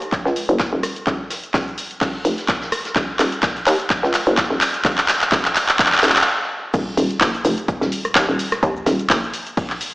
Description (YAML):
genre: bass house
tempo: 127 BPM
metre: 4/4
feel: swing 55% on 16ths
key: Eb minor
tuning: A4 = 440 Hz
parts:
  - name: house drum kit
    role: drums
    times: 0.0-9.9 s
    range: crash cymbal, handclaps, hi-hat, rim click, shaker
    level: -19 LUFS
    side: equal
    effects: studio reverb
  - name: electronic kick drum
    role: drums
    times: 0.1-9.7 s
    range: none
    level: -23 LUFS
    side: equal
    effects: studio reverb
  - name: vintage brush drum kit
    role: drums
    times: 0.1-9.9 s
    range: hi-hat, shaker, snare drum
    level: -32 LUFS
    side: equal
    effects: none
  - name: hollow knocking FM bass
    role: bass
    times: 0.3-9.3 s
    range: Eb1 to Eb2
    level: -20 LUFS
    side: equal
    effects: tube saturation, sidechain pumping, high-pass filter
room: wet plate reverb, RT60 2.0 s, small room ambience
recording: played on a big sound system in a bare room, stone room reverb, small speaker sound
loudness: -16 LUFS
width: side -22 dB against mid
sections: 0.0-6.7 A section; 6.7-9.9 B section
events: build-up 0.0-6.7; drum fill 0.0-6.3; stop 6.3-6.7; drop 6.7-9.9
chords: none